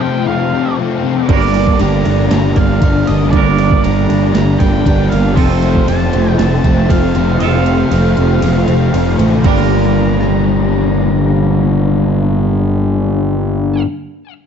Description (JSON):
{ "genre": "rock, shoegaze and dream pop", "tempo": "118 BPM", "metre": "4/4", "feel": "straight", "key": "G minor", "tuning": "A4 = 439 Hz", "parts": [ { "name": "octave-fuzz lead guitar", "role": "melody", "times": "0.0-13.8 s", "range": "C5 to Bb5", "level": "-24 LUFS", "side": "right 1 dB", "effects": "distortion, ping-pong delay" }, { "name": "overdriven electric guitar", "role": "riff", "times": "0.0-13.9 s", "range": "F2 to D4", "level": "-15 LUFS", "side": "left 6 dB", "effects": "ensemble chorus" }, { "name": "picked twelve-string acoustic guitar", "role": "arpeggios", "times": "1.3-13.9 s", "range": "A3 to G4", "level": "-22 LUFS", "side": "right 10 dB", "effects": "ensemble chorus, ping-pong delay" }, { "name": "twangy electric guitar", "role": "riff", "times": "1.3-13.9 s", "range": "G2 to Bb4", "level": "-20 LUFS", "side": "right 14 dB", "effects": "reverse reverb" }, { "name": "fuzz picked electric bass", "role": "bass", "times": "1.3-13.8 s", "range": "F1 to A1", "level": "-14 LUFS", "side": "right 2 dB", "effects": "overdrive" }, { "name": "crisp 8-bit digital drum machine", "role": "drums", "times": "1.3-10.3 s", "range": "crash cymbal, kick drum, ride cymbal, rim click, snare drum", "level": "-18 LUFS", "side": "right 1 dB", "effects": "overdrive" }, { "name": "tambourine", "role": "percussion", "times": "1.5-9.7 s", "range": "none", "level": "-43 LUFS", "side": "right 19 dB", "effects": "none" } ], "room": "moderate plate reverb, RT60 1.1 s", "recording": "dreamy mix soaked in reverb, nothing above 7.7 kHz", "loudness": "-10 LUFS", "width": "side -7 dB against mid", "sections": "0.0-9.4 A section; 9.4-13.5 B section", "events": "kick and snare drop out 7.4-9.4", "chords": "0.0 F; 1.3 Gm; 5.4 F; 9.4 Gm", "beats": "0.27 0.78 | 1.29 1.80 2.31 2.82 | 3.33 3.84 4.35 4.86 | 5.37 5.88 6.39 6.90 | 7.41 7.92 8.43 8.94 | 9.45 9.96 10.46 10.97 | 11.48 11.99 12.50 13.01" }